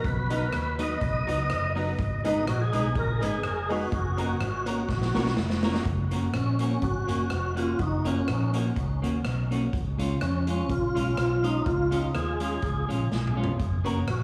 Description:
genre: ska.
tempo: 124 BPM.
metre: 4/4.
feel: swing 54% on 8ths.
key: F# major.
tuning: A4 = 439 Hz.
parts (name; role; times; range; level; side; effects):
tonewheel organ; melody; 0.0-14.2 s; C#4 to D#5; -32 LUFS; equal; chorus vibrato, slow rotary speaker, dub echo, plate reverb, slapback echo.
vintage muted fingered electric bass; bass; 0.0-14.2 s; E#1 to E#2; -32 LUFS; equal; none.
street-band drum kit; drums; 0.0-14.2 s; hi-hat, kick drum, rim click, snare drum, toms; -34 LUFS; equal; none.
semi-hollow electric guitar; accompaniment; 0.3-14.0 s; F#3 to F#4; -35 LUFS; equal; plate reverb, slapback echo.
honky-tonk upright piano; stabs; 0.3-5.8, 13.8-14.0 s; C#4 to B4; -38 LUFS; equal; dub echo, plate reverb, slapback echo.
room: moderate club reverb, RT60 0.7 s.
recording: live gig heard through the venue's PA, club reverb, vinyl crackle, small room ambience.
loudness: -27 LUFS.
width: mono.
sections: 0.0-5.9 A section; 5.9-14.2 B section.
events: drum fill 4.9-5.9, 13.1-13.6.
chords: 0.0 B; 2.0 G#m; 3.9 F#; 9.7 C#; 13.6 F#.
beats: | 0.05 0.53 1.01 1.50 | 1.98 2.47 2.95 3.44 | 3.92 4.40 4.89 5.37 | 5.86 6.34 6.83 7.31 | 7.79 8.28 8.76 9.25 | 9.73 10.21 10.70 11.18 | 11.66 12.15 12.63 13.11 | 13.60 14.08.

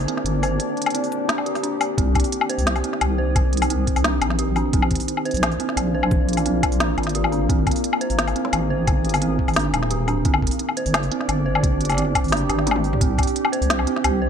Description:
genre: half-time drum and bass.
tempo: 174 BPM.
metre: 4/4.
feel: half-time.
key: C minor.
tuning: A4 = 435 Hz.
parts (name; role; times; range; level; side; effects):
deep dark ambient pad; sustained chords; 0.0-14.3 s; Eb3 to Eb6; -26 LUFS; equal; chorus, built-in reverb, sidechain pumping.
dark detuned synth bell; arpeggios; 0.0-14.3 s; C4 to C5; -27 LUFS; right 4 dB; chorus, ping-pong delay.
deep soft wobble bass; bass; 0.0-14.3 s; Eb1 to C2; -23 LUFS; equal; chorus.
organic electronic drum kit; drums; 0.0-14.1 s; hi-hat, snare drum, toms, woodblock; -24 LUFS; left 3 dB; none.
electronic kick drum; drums; 2.0-13.3 s; none; -22 LUFS; equal; none.
backwards swelling texture; texture; 13.6-14.3 s; G4; -32 LUFS; right 5 dB; built-in reverb.
room: light reverb, digital ambience.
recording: none.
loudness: -18 LUFS.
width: side -8 dB against mid.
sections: 0.0-2.0 A section; 2.0-14.3 A section.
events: drop 0.0-2.0, 2.0-14.3; kick drops out 12.7-13.0; drum fill 12.7-13.0.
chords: 0.0 Gm; 2.0 Cm; 4.7 Bb; 7.5 Absus2; 10.3 Gm; 13.0 Cm.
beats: 0.25 | 0.60 0.94 1.29 1.63 | 1.98 2.32 2.67 3.01 | 3.35 3.70 4.04 4.39 | 4.73 5.08 5.42 5.77 | 6.11 6.46 6.80 7.15 | 7.49 7.84 8.18 8.53 | 8.87 9.22 9.56 9.91 | 10.25 10.60 10.94 11.29 | 11.63 11.98 12.32 12.66 | 13.01 13.36 13.70 14.04.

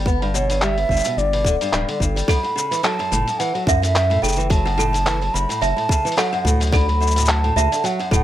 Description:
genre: folktronica.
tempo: 108 BPM.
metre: 4/4.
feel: swing 56% on 16ths.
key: unclear.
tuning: A4 = 439 Hz.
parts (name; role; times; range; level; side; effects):
picked steel-string acoustic guitar; arpeggios; 0.0-8.2 s; F#2 to B3; -25 LUFS; equal; plate reverb.
round analog bass; bass; 0.0-8.2 s; D1 to F#2; -21 LUFS; equal; none.
electronic kick drum; drums; 0.1-8.2 s; none; -19 LUFS; equal; none.
lo-fi sampler-style drum kit; drums; 0.1-8.2 s; cabasa, handclaps, hi-hat; -25 LUFS; left 1 dB; none.
mellow baroque flute; melody; 0.3-8.2 s; C#5 to B5; -22 LUFS; right 1 dB; plate reverb, ping-pong delay.
toy piano; second line; 2.3-8.2 s; A4 to E5; -26 LUFS; right 4 dB; plate reverb, ping-pong delay.
room: light reverb.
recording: none.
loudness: -17 LUFS.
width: side -12 dB against mid.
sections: 0.0-2.3 A section; 2.3-8.2 B section.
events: none.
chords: 0.0 G; 2.3 F#m7; 6.7 D.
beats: | 0.06 0.62 1.18 1.73 | 2.29 2.84 3.40 3.95 | 4.51 5.06 5.62 6.17 | 6.73 7.29 7.84.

